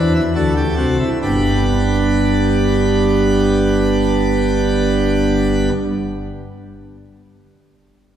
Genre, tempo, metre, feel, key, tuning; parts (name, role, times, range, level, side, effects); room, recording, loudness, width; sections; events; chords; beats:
classical, baroque-style 3-part fugue for pipe organ; free time; G major; A4 = 441 Hz
pipe organ, plenum; solo; 0.0-5.7 s; G1 to B4; -14 LUFS; right 1 dB
wet church reverb, RT60 2.7 s; heard from further back in the room; -14 LUFS; side -10 dB against mid
0.0-1.2 A section; 1.2-6.6 B section
slowing down 0.0-1.2
0.3 D7; 1.2 G
free time